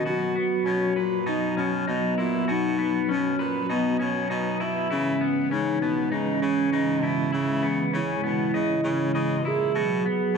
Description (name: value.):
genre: dream pop.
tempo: 99 BPM.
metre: 4/4.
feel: straight.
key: B major.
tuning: A4 = 440 Hz.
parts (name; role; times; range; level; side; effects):
hollow clarinet-like synth lead; melody; 0.0-10.4 s; B3 to G#4; -26 LUFS; right 1 dB; chorus, ping-pong delay.
string machine, cellos; sustained chords; 0.0-10.4 s; C#3 to B4; -28 LUFS; equal; ensemble chorus.
electric guitar through a small old amp; arpeggios; 0.0-10.4 s; B3 to D#5; -28 LUFS; left 3 dB; wide subtle chorus, ping-pong delay.
breathy baritone saxophone; bass; 0.1-10.4 s; A#2 to C#3; -32 LUFS; right 1 dB; none.
room: moderate recital hall reverb, RT60 1.5 s, digital ambience.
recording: none.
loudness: -22 LUFS.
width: side -5 dB against mid.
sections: 0.1-10.4 A section.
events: none.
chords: 0.1 Bmaj7; 4.9 C#m7; 9.8 B5.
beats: | 0.05 0.66 1.27 1.87 | 2.48 3.08 3.69 4.30 | 4.90 5.51 6.11 6.72 | 7.33 7.93 8.54 9.14 | 9.75 10.36.